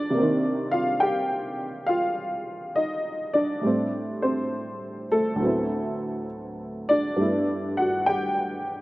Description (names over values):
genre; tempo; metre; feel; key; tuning
solo jazz; 68 BPM; 4/4; swing 67% on 8ths, rubato; unclear; A4 = 441 Hz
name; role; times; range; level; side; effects
honky-tonk upright piano; solo; 0.0-8.8 s; D2 to G5; -23 LUFS; equal; none
room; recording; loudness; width
little or no reverb; recorded outdoors, with no room sound; -23 LUFS; side -18 dB against mid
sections
0.0-8.8 A section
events
none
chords
0.2 Cm9; 3.6 Am7; 5.4 D13; 7.2 Gmaj13